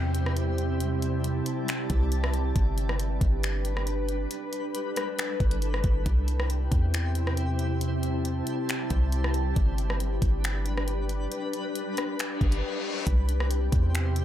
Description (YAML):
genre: hip hop, atmospheric cloud-rap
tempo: 137 BPM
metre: 4/4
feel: half-time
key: C major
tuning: A4 = 440 Hz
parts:
  - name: glassy FM pad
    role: sustained chords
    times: 0.0-14.2 s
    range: C3 to A5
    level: -31 LUFS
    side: equal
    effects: ensemble chorus, built-in reverb, sidechain pumping
  - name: warm 808-style bass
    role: bass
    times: 0.0-14.2 s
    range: G1 to E2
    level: -27 LUFS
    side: equal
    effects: none
  - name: downlifter and reverse cymbal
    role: sound effects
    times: 0.0-2.6, 12.3-13.1 s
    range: none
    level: -39 LUFS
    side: left 4 dB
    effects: none
  - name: twinkling granular texture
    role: texture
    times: 0.0-14.2 s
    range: G3 to D5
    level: -40 LUFS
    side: equal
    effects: built-in reverb
  - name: smooth R&B drum kit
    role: drums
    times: 0.1-14.2 s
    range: finger snaps, hi-hat, kick drum, rim click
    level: -29 LUFS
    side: equal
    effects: none
room: little or no reverb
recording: none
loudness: -25 LUFS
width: side -11 dB against mid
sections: 0.0-13.1 A section; 13.1-14.2 B section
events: reverse cymbal 12.3-13.1; break 12.6-13.1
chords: 0.0 C; 2.6 G; 6.1 C; 9.6 G; 13.1 C